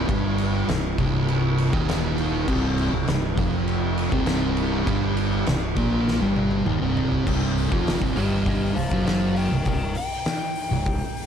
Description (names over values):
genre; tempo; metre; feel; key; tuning
stoner and doom metal; 100 BPM; 4/4; straight; C minor; A4 = 441 Hz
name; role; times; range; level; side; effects
thick fuzz guitar; riff; 0.0-11.0 s; C2 to Bb3; -27 LUFS; left 10 dB; distortion
thick fuzz guitar; riff; 0.0-11.0 s; C2 to Bb3; -26 LUFS; right 8 dB; distortion
fuzz fingered electric bass; bass; 0.0-11.0 s; C1 to Bb1; -27 LUFS; equal; overdrive
oversized low-tuned drum kit; drums; 0.1-11.3 s; crash cymbal, hi-hat, kick drum, ride cymbal, snare drum, toms; -26 LUFS; equal; none
fuzz lead guitar; melody; 8.2-11.3 s; G4 to G5; -30 LUFS; left 4 dB; distortion
room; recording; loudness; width
studio reverb; dark, warm production; -20 LUFS; side -8 dB against mid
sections
0.0-7.3 A section; 7.3-11.3 B section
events
drum fill 6.1-7.3; lead electric guitar solo 7.3-11.3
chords
0.0 Cm; 7.3 C5